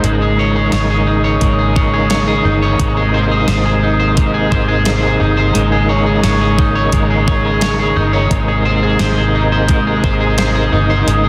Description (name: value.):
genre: dream pop.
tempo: 87 BPM.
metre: 4/4.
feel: straight.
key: Ab major.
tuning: A4 = 441 Hz.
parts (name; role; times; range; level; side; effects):
percussive tonewheel organ; sustained chords; 0.0-11.3 s; C3 to Eb4; -20 LUFS; equal; overdrive, chorus vibrato, fast rotary speaker.
electric guitar at the edge of break-up; arpeggios; 0.0-11.3 s; Ab3 to Db5; -18 LUFS; equal; subtle chorus, delay.
vintage muted fingered electric bass; bass; 0.0-11.3 s; G1 to Ab1; -19 LUFS; equal; none.
gated 80s digital drum machine; drums; 0.0-11.2 s; hi-hat, kick drum, snare drum; -20 LUFS; equal; gated reverb, gated reverb snare, overdrive.
room: moderate concert hall reverb, RT60 2.2 s.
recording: dense, heavily limited modern master.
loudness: -14 LUFS.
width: mono.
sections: 0.0-11.3 A section.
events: none.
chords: 0.0 Eb7sus4/Ab; 2.8 Abadd9; 5.6 Eb7sus4/Ab; 8.3 Abadd9.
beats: | 0.04 0.72 1.41 2.10 | 2.79 3.48 4.17 4.86 | 5.55 6.24 6.93 7.62 | 8.31 9.00 9.69 10.38 | 11.07.